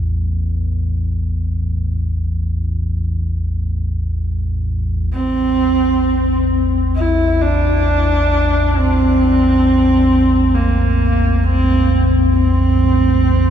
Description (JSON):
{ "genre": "dark ambient drone", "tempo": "free time", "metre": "none", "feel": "none", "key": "A phrygian", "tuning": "A4 = 440 Hz", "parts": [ { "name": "deep rumbling drone", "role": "drone", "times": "0.0-13.5 s", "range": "A1 to E2", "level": "-16 LUFS", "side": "equal", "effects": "built-in reverb, lush chorus" }, { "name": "rich horsehead fiddle", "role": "melody", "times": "5.1-13.5 s", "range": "Bb3 to E4", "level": "-15 LUFS", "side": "right 1 dB", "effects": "ping-pong delay" } ], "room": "wet cathedral reverb, RT60 5.9 s", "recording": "none", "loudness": "-14 LUFS", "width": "side -9 dB against mid", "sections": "0.0-5.1 A section; 5.1-13.5 B section", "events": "none", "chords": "0.0 A5" }